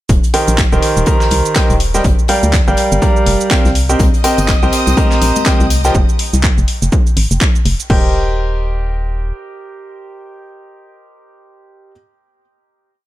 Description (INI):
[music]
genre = piano house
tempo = 123 BPM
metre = 4/4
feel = swing 59% on 16ths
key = Eb major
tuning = A4 = 438 Hz
[part]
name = organ-like FM bass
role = bass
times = 0.1-9.3 s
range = Eb1 to D2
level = -15 LUFS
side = equal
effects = sidechain pumping
[part]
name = electronic kick drum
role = drums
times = 0.1-8.0 s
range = none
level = -14 LUFS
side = equal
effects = overdrive, studio reverb
[part]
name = garage drum kit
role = drums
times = 0.1-8.0 s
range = cabasa, crash cymbal, handclaps, hi-hat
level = -20 LUFS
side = right 1 dB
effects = studio reverb
[part]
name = loose indie drum kit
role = drums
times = 0.1-5.9 s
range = hi-hat, snare drum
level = -28 LUFS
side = left 4 dB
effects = sidechain pumping on hats, high-pass filter on hats, studio reverb, high-pass filter on snare, high-pass filter on room
[part]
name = clear baby grand piano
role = riff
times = 0.3-11.9 s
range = Eb3 to Bb5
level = -17 LUFS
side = right 1 dB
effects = sidechain pumping, dub echo
[part]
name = string machine, violins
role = sustained chords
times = 4.0-6.0 s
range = Eb5 to Eb6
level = -23 LUFS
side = left 2 dB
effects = ensemble chorus, sidechain pumping
[part]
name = tambourine and congas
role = percussion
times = 4.0-5.9 s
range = none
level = -25 LUFS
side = left 5 dB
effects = none
[sound]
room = little or no reverb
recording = none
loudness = -11 LUFS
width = side -15 dB against mid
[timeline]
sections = 0.1-7.9 drop; 7.9-11.8 final chord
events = drop 0.1-7.9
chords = 0.1 Eb6; 2.0 Gm7; 3.8 Cm7; 5.9 F5; 7.9 Eb6